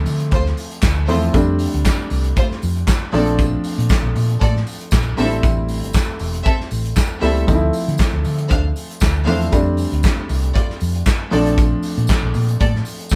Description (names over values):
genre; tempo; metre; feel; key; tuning
disco; 117 BPM; 4/4; straight; D minor; A4 = 440 Hz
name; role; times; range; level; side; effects
dark baby grand piano; accompaniment; 0.0-13.2 s; F3 to E4; -25 LUFS; equal; none
hollow-body short-scale fingered electric bass; bass; 0.0-13.2 s; E1 to D3; -22 LUFS; equal; none
modern studio drum kit; drums; 0.1-13.2 s; handclaps, hi-hat, kick drum, snare drum; -22 LUFS; equal; none
tambourine; percussion; 0.1-13.2 s; none; -40 LUFS; equal; none
warm studio string section; second line; 0.3-12.7 s; A3 to F5; -27 LUFS; equal; none
room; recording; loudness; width
light reverb; band playing live in one room; -18 LUFS; mono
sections
0.0-13.2 A section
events
none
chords
0.0 Dm7; 1.3 F6; 3.1 Bbmaj7; 5.2 Am7; 7.5 Dm7; 9.5 F6; 11.3 Bbmaj7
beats
0.32 0.83 | 1.34 1.85 2.37 2.88 | 3.39 3.90 4.41 4.92 | 5.43 5.94 6.46 6.97 | 7.48 7.99 8.50 9.01 | 9.53 10.04 10.55 11.06 | 11.57 12.09 12.60 13.11